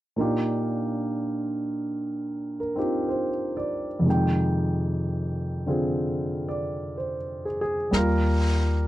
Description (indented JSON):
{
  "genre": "jazz ballad",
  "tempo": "62 BPM",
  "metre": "4/4",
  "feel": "swing 67% on 8ths",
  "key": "Eb major",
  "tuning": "A4 = 439 Hz",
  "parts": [
    { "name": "warm concert grand piano", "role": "accompaniment", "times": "0.2-8.9 s", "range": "F2 to G5", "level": "-25 LUFS", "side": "equal", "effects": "none" },
    { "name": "upright bass", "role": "bass", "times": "7.9-8.9 s", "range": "Eb2", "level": "-23 LUFS", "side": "left 1 dB", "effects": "none" },
    { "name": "brushed snare drum and snare drum", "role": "drums", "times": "7.9-8.9 s", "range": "none", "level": "-33 LUFS", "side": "left 1 dB", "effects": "none" }
  ],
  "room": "light reverb",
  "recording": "dry, close 1970s-style studio recording",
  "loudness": "-24 LUFS",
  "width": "side -15 dB against mid",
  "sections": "0.2-7.9 A section",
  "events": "none",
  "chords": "0.2 Ebmaj9/Bb; 4.1 Fm7; 7.9 Ebadd9"
}